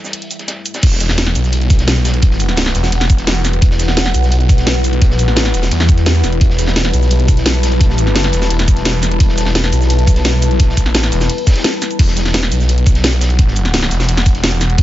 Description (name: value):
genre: dark technical drum and bass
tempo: 172 BPM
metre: 4/4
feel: straight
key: E minor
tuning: A4 = 440 Hz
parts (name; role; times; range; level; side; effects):
- deep dark ambient pad; sustained chords; 0.0-14.8 s; G3 to A5; -21 LUFS; left 2 dB; chorus, built-in reverb, sidechain pumping
- crunchy breakbeat drum kit; drums; 0.0-14.8 s; hi-hat, snare drum; -27 LUFS; equal; high-pass filter on hats, low-pass filter on hats, high-pass filter on snare, low-pass filter on snare, high-pass filter on room, low-pass filter on room
- drum and bass drum kit; drums; 0.0-14.8 s; cabasa, crash cymbal, hi-hat, snare drum; -18 LUFS; equal; none
- snarling distorted saw bass; bass; 0.8-14.8 s; E1 to E2; -14 LUFS; equal; distortion, tube saturation, sidechain pumping
- electronic kick drum; drums; 0.8-14.8 s; none; -11 LUFS; equal; none
room: little or no reverb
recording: nothing above 7.7 kHz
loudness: -11 LUFS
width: side -14 dB against mid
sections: 0.8-14.8 A section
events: drop 0.8-14.8; break 11.6-12.0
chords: 0.0 Em; 0.8 Emadd9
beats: 0.13 0.48 | 0.83 1.18 1.53 1.88 | 2.23 2.57 2.92 3.27 | 3.62 3.97 4.32 4.67 | 5.02 5.37 5.71 6.06 | 6.41 6.76 7.11 7.46 | 7.81 8.16 8.51 8.85 | 9.20 9.55 9.90 10.25 | 10.60 10.95 11.29 11.64 | 11.99 12.34 12.69 13.04 | 13.39 13.74 14.09 14.44 | 14.78